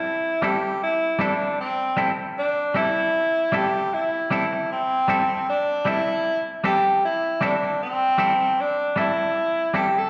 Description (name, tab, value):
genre	reggae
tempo	77 BPM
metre	4/4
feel	swing 57% on 16ths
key	A minor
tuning	A4 = 440 Hz
part	clear tenor saxophone	melody	0.0-10.1 s	C4 to A4	-24 LUFS	equal	none
part	semi-hollow electric guitar	accompaniment	0.4-9.9 s	G3 to A4	-28 LUFS	equal	spring reverb
room	wet large studio reverb, RT60 1.3 s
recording	band playing live in one room, cassette tape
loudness	-23 LUFS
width	mono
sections	0.0-10.1 A section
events	none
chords	0.0 Am7